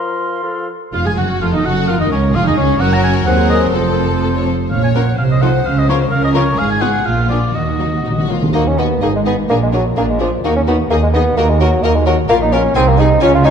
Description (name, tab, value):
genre	quick classical-period movement for symphony orchestra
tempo	117-132 BPM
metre	2/4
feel	rubato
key	Bb minor, Eb minor from 6.6 s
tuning	A4 = 440 Hz
part	hollow concert flute	second line	0.0-0.7 s	C6	-24 LUFS	left 2 dB	none
part	warm clarinet	second line	0.0-0.7 s	A4 to Bb4	-29 LUFS	left 6 dB	none
part	warm oboe	second line	0.0-8.3 s	C5 to Bb5	-21 LUFS	equal	none
part	warm bassoon	accompaniment	0.0-0.7, 8.5-13.5 s	F3 to F4	-15 LUFS	equal	none
part	rich studio violin section	second line	0.9-13.5 s	Db4 to Db5	-22 LUFS	left 5 dB	none
part	warm studio viola section	accompaniment	0.9-13.5 s	F3 to Ab4	-22 LUFS	right 1 dB	none
part	warm studio cello section	bass	0.9-13.5 s	Db2 to Eb3	-18 LUFS	right 3 dB	none
part	warm studio double bass section	bass	0.9-13.5 s	F1 to Eb2	-18 LUFS	right 2 dB	none
part	warm studio violin section	melody	1.4-13.5 s	F4 to Ab5	-24 LUFS	left 7 dB	none
part	timpani	percussion	4.7-5.2, 7.5-8.5 s	Bb2 to Eb3	-22 LUFS	left 1 dB	none
room	moderate concert hall reverb, RT60 1.9 s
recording	dark, warm production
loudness	-12 LUFS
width	side -7 dB against mid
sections	0.9-8.5 A section; 8.5-13.5 B section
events	timpani fill 7.5-8.5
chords	0.4 F; 0.9 Gbsus2; 1.4 F7; 1.9 Bbm/F; 2.8 Gb; 3.3 Cdim/Eb; 3.7 F; 4.7 Bbm; 5.2 F7(no3)/C; 5.7 Bbm/Db; 6.6 Fdim/Ab; 7.1 Bb; 7.5 Ebm; 9.0 Abm; 9.5 Bb7; 10.4 Ebm; 10.9 Abm/Eb; 11.4 Ebm; 12.3 Bbm; 12.8 Ab/C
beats	0.43 | 0.94 1.42 | 1.88 2.34 | 2.80 3.26 | 3.74 4.22 | 4.71 5.18 | 5.65 6.11 | 6.58 7.05 | 7.54 8.04 | 8.54 9.02 | 9.49 9.97 | 10.44 10.91 | 11.38 11.84 | 12.29 12.76 | 13.21